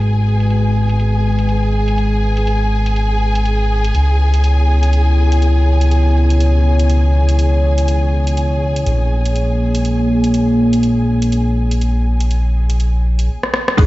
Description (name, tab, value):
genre	deep house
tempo	122 BPM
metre	4/4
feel	swing 59% on 16ths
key	unclear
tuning	A4 = 442 Hz
part	dark analog pad	sustained chords	0.0-13.9 s	G#3 to C#5	-19 LUFS	left 1 dB	chorus, sidechain pumping
part	smooth synth bass	bass	0.0-13.9 s	G#1 to C#2	-14 LUFS	equal	sidechain pumping
part	house drum kit	drums	0.0-13.9 s	crash cymbal, hi-hat, rim click	-23 LUFS	equal	low-pass filter on hats, low-pass filter on snare, low-pass filter on perc, low-pass filter on cymbals, low-pass filter on room
part	warm symphonic violin section	texture	0.0-13.9 s	G#4 to G#5	-24 LUFS	equal	sidechain pumping
part	marimba with medium hard mallets	melody	13.8-13.9 s	G#4	-22 LUFS	left 1 dB	none
part	filtered dub chord stab	stabs	13.8-13.9 s	G#3 to G#4	-17 LUFS	equal	phaser, sidechain pumping
part	electronic kick drum	drums	13.8-13.9 s	none	-9 LUFS	equal	none
part	sub drop	sound effects	13.8-13.9 s	none	-15 LUFS	right 1 dB	none
room	digital ambience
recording	played on a big sound system in a bare room, stone room reverb, nothing above 7.8 kHz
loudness	-12 LUFS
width	side -17 dB against mid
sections	0.0-13.8 A section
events	filter sweep on drum 0.0-13.8; stop 13.3-13.8; drum fill 13.4-13.8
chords	0.0 G#m7; 3.9 C#m7; 8.9 A#m7